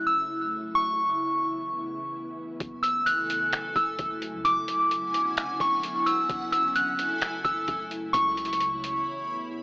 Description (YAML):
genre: hip hop, atmospheric cloud-rap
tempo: 130 BPM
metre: 4/4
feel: half-time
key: F# minor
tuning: A4 = 439 Hz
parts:
  - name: soft synth bell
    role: melody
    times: 0.0-9.0 s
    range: C#6 to F#6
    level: -25 LUFS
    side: equal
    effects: chorus, cassette tape, tape echo
  - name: ethereal airy pad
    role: sustained chords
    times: 0.0-9.6 s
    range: C#3 to E4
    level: -36 LUFS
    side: equal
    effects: ensemble chorus, built-in reverb, sidechain pumping, cassette tape
  - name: warm 808-style bass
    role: bass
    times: 2.6-9.0 s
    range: E1 to C#2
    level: -45 LUFS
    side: equal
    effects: none
  - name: lo-fi sampler-style drum kit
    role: drums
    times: 2.6-8.9 s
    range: finger snaps, hi-hat, kick drum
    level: -32 LUFS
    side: equal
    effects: cassette tape
  - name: backwards swelling texture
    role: texture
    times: 3.1-9.6 s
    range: C#4 to B5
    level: -38 LUFS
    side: equal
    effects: built-in reverb, cassette tape
room: little or no reverb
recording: home recording on cassette, AM radio sound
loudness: -24 LUFS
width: side -27 dB against mid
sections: 0.0-9.6 A section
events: break 9.1-9.6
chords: 0.0 F#m7; 0.8 C#m7; 2.6 F#m9; 4.5 E13; 6.3 F#m9; 8.1 C#m7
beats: 0.30 | 0.76 1.22 1.68 2.14 | 2.60 3.07 3.53 3.99 | 4.45 4.91 5.37 5.83 | 6.30 6.76 7.22 7.68 | 8.14 8.60 9.07 9.53